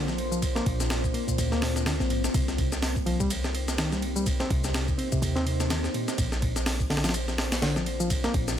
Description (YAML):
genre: breakbeat, breaks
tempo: 125 BPM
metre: 4/4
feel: swing 58% on 16ths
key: unclear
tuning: A4 = 440 Hz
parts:
  - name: deep dark ambient pad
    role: sustained chords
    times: 0.0-8.6 s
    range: Bb3 to D5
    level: -33 LUFS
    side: left 1 dB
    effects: chorus, built-in reverb, vintage 12-bit sampler grit, sidechain pumping
  - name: reed electric piano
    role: riff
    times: 0.0-8.6 s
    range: Ab2 to C4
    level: -30 LUFS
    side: left 1 dB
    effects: overdrive, ping-pong delay
  - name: warm 808-style bass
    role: bass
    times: 0.0-8.6 s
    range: Bb1 to Eb2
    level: -30 LUFS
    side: equal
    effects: none
  - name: breakbeat sampler-style drum kit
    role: drums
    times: 0.1-8.6 s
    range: hi-hat, kick drum, ride cymbal, snare drum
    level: -29 LUFS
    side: equal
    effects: none
  - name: shaker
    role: drums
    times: 0.1-8.6 s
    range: none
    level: -39 LUFS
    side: left 6 dB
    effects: overdrive
room: light reverb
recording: none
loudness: -24 LUFS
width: side -10 dB against mid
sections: 0.0-8.6 A section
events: none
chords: 0.0 Bbadd9; 2.3 Cm7; 6.2 Bbadd9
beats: | 0.42 0.90 1.38 1.86 | 2.34 2.82 3.30 3.78 | 4.26 4.74 5.22 5.70 | 6.18 6.66 7.14 7.62 | 8.10 8.58